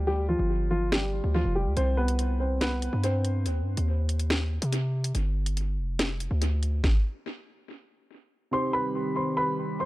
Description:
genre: hip hop, drill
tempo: 142 BPM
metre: 4/4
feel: half-time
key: C harmonic minor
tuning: A4 = 441 Hz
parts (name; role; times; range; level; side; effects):
- dark grand piano; melody; 0.0-3.4, 8.5-9.9 s; F3 to C6; -29 LUFS; equal; low-pass filter, analog delay
- distorted 808-style bass; bass; 0.0-6.8 s; F1 to C3; -26 LUFS; equal; distortion
- drill drum kit; drums; 0.9-6.9 s; hi-hat, kick drum, snare drum; -29 LUFS; equal; analog delay
- dark baby grand piano; accompaniment; 8.5-9.9 s; C3 to G4; -30 LUFS; right 1 dB; low-pass filter, analog delay
- hollow soft pad; sustained chords; 8.7-9.9 s; Eb3 to G4; -33 LUFS; equal; chorus
room: little or no reverb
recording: echo-heavy mix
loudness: -25 LUFS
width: side -18 dB against mid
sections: 0.0-8.5 A section; 8.5-9.9 B section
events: break 0.0-1.8, 3.5-8.5; stop 6.8-8.5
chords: 0.0 G5; 1.8 Cm; 5.1 G5; 8.5 Cm

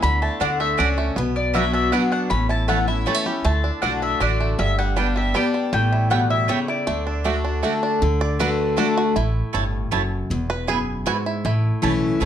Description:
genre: bluegrass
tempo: 158 BPM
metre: 3/4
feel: straight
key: D major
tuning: A4 = 438 Hz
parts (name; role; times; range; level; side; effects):
- bluegrass banjo; melody; 0.0-11.8 s; D3 to D5; -27 LUFS; right 4 dB; none
- mandolin; melody; 0.0-7.6 s; C#5 to B5; -24 LUFS; left 3 dB; none
- picked steel-string acoustic guitar; accompaniment; 0.0-12.3 s; E2 to G4; -23 LUFS; left 2 dB; none
- upright bass; bass; 0.0-12.3 s; E1 to D2; -23 LUFS; equal; none
- mandolin; stabs; 0.4-12.3 s; A3 to A5; -26 LUFS; right 8 dB; none
room: light reverb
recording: none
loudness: -19 LUFS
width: side -10 dB against mid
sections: 0.0-8.0 A section; 8.0-12.3 B section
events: five-string banjo solo 8.0-12.3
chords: 0.0 D; 1.2 Bm; 2.3 A; 3.4 D; 4.6 G; 5.7 A7; 6.9 D; 9.2 A; 10.3 E; 11.4 A

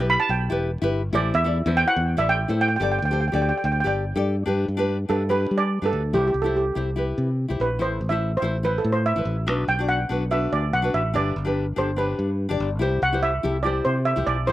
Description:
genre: calypso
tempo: 144 BPM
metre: 4/4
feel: straight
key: G major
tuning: A4 = 441 Hz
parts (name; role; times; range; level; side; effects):
- steel pan; melody; 0.0-14.5 s; G4 to B5; -23 LUFS; right 2 dB; slapback echo
- nylon-string guitar; accompaniment; 0.0-14.5 s; D4 to D5; -27 LUFS; left 2 dB; slapback echo
- modern bright fingered electric bass; bass; 0.0-14.5 s; E1 to G3; -24 LUFS; equal; none
room: little or no reverb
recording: recorded outdoors, with no room sound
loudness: -20 LUFS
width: side -15 dB against mid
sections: 0.0-4.5 A section; 4.5-14.5 B section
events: steel pan solo 4.5-14.5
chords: 0.0 Em; 1.1 Am; 2.8 Gsus2; 4.5 G; 6.1 C; 7.8 Am; 9.5 Bm; 11.1 G; 12.8 C

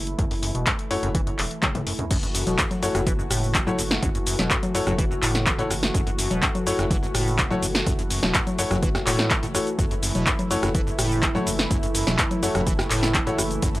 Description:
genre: acid house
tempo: 125 BPM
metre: 4/4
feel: straight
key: F# minor pentatonic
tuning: A4 = 440 Hz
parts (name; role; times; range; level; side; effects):
- warm analog pad; sustained chords; 0.0-13.8 s; E3 to F#4; -30 LUFS; equal; chorus, sidechain pumping
- saturated sub bass; bass; 0.0-13.8 s; E1 to F#1; -31 LUFS; equal; sidechain pumping
- punchy analog drum machine; drums; 0.1-13.8 s; cabasa, congas, crash cymbal, handclaps, hi-hat, rim click, snare drum, toms; -24 LUFS; equal; none
- liquid acid bass; riff; 0.2-13.8 s; F#1 to F#3; -28 LUFS; equal; chorus, cassette tape, tape echo
- electronic kick drum; drums; 0.2-13.7 s; none; -26 LUFS; equal; none
- bright concert grand piano; stabs; 0.9-13.4 s; A3 to C#5; -29 LUFS; left 2 dB; tape echo
room: light reverb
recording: dry, gritty hardware recording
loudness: -20 LUFS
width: side -17 dB against mid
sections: 0.0-2.1 A section; 2.1-13.8 B section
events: drum fill 1.6-2.1; drop 2.1-13.8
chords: 0.0 F#m7

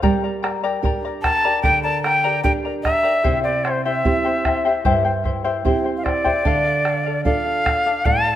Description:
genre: andean folk, Andean ensemble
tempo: 75 BPM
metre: 4/4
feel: straight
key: unclear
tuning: A4 = 440 Hz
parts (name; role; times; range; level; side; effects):
- charango; accompaniment; 0.0-8.4 s; E4 to Bb5; -23 LUFS; left 6 dB; none
- nylon-string guitar; accompaniment; 0.0-8.4 s; G2 to Bb4; -24 LUFS; right 5 dB; none
- bombo; percussion; 0.0-8.2 s; none; -24 LUFS; right 1 dB; none
- breathy bright quena; melody; 1.2-8.4 s; C5 to A5; -19 LUFS; equal; none
room: moderate recital hall reverb, RT60 1.7 s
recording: close, detailed microphones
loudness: -17 LUFS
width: side -12 dB against mid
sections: 0.0-8.4 A section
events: none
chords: 0.0 Gm; 3.2 C; 6.4 Dm

